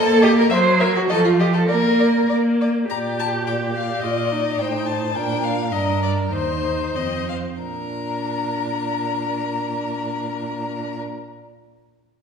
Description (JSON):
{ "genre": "quick classical-period movement for string quartet", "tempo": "90-108 BPM", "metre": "2/4", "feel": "rubato", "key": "Bb major", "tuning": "A4 = 442 Hz", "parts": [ { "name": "rich violin", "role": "melody", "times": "0.0-11.0 s", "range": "F4 to Bb5", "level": "-28 LUFS", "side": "left 6 dB", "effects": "none" }, { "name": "rich violin", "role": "second line", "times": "0.0-11.0 s", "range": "Bb4 to Fb5", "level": "-27 LUFS", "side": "left 3 dB", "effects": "none" }, { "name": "rich viola", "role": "accompaniment", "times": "0.0-11.0 s", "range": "F3 to G4", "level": "-22 LUFS", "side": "right 1 dB", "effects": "none" }, { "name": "warm cello", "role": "bass", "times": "0.0-11.0 s", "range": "Eb2 to C5", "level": "-23 LUFS", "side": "right 2 dB", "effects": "none" } ], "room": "wet recital hall reverb, RT60 1.4 s", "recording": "heard from further back in the room", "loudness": "-18 LUFS", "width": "side -6 dB against mid", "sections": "0.0-2.9 A section; 2.9-7.6 B section; 7.6-10.2 C section", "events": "slowing down 4.6-7.6", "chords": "0.0 Eb/Bb (rootless); 0.5 Gb; 1.1 F; 1.7 N.C.; 2.9 Bb; 4.0 F7/Bb; 5.2 Bb; 5.7 Gm; 6.3 Cm/Eb; 6.9 F5; 7.6 Bb", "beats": "| 0.53 1.10 | 1.70 2.30 | 2.90 3.47 | 4.03 4.59 | 5.15 5.72 | 6.31 6.94 | 7.60 8.25 | 8.90 9.55" }